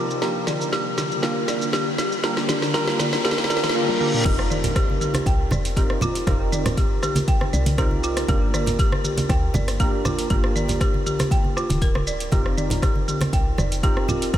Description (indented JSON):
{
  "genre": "afro house",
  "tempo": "119 BPM",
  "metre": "4/4",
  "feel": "swing 53% on 16ths",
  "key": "unclear",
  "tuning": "A4 = 440 Hz",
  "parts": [
    { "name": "ethereal airy pad", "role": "sustained chords", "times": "0.0-3.7 s", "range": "C3 to A5", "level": "-31 LUFS", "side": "equal", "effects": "ensemble chorus, built-in reverb, sidechain pumping" },
    { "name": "folk marimba with hard mallets", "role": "arpeggios", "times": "0.0-14.4 s", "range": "F4 to G5", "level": "-28 LUFS", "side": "equal", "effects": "sidechain pumping, diffuse ambient delay" },
    { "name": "warm analog keys", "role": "stabs", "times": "0.0-14.4 s", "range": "Bb3 to Bb4", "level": "-26 LUFS", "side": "right 1 dB", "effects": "chorus, sidechain pumping, diffuse ambient delay" },
    { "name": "woody FM bass", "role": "bass", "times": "0.0-14.4 s", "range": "D1 to D2", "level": "-27 LUFS", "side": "equal", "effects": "sidechain pumping, high-pass filter" },
    { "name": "riser and reverse cymbal", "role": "sound effects", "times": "1.2-4.3 s", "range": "none", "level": "-34 LUFS", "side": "left 1 dB", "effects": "none" },
    { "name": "afro-pop drum kit", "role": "drums", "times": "0.1-14.4 s", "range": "crash cymbal, hi-hat, rim click, shaker, snare drum, toms", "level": "-27 LUFS", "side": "equal", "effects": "small room ambience" },
    { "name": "electronic kick drum", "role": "drums", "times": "4.3-14.4 s", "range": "none", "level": "-22 LUFS", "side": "equal", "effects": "small room ambience" },
    { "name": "congas", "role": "percussion", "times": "4.3-14.4 s", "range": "none", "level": "-28 LUFS", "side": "right 2 dB", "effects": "none" }
  ],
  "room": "moderate huge ambient reverb, RT60 6.5 s",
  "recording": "dreamy mix soaked in reverb",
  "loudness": "-19 LUFS",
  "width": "side -11 dB against mid",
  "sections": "0.0-4.3 A section; 4.3-14.4 B section",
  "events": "build-up 0.0-4.3; drum fill 0.0-3.7, 3.9-4.3; filter sweep on synth keys 0.0-4.3; reverse cymbal 3.2-4.3; drop 4.3-14.4",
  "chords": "0.2 Gm7; 4.3 F9sus4; 8.3 Gm7; 12.3 F9sus4"
}